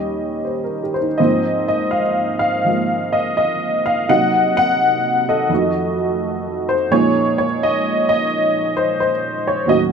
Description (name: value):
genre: solo jazz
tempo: 84 BPM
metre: 4/4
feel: swing 67% on 8ths, rubato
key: Ab major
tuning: A4 = 440 Hz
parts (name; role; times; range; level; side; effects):
- honky-tonk upright piano; solo; 0.0-9.9 s; Eb2 to Gb5; -16 LUFS; equal; none
room: moderate studio reverb, RT60 0.7 s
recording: none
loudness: -16 LUFS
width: side -6 dB against mid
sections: 0.0-1.2 A section; 1.2-9.9 A section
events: none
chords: 0.0 Eb7; 1.2 Ab69; 4.1 Cm7b5; 5.5 F7b9; 6.9 Bbm7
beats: 0.45 | 1.19 1.92 2.65 3.37 | 4.08 4.79 5.50 6.21 | 6.91 7.60 8.29 8.98 | 9.68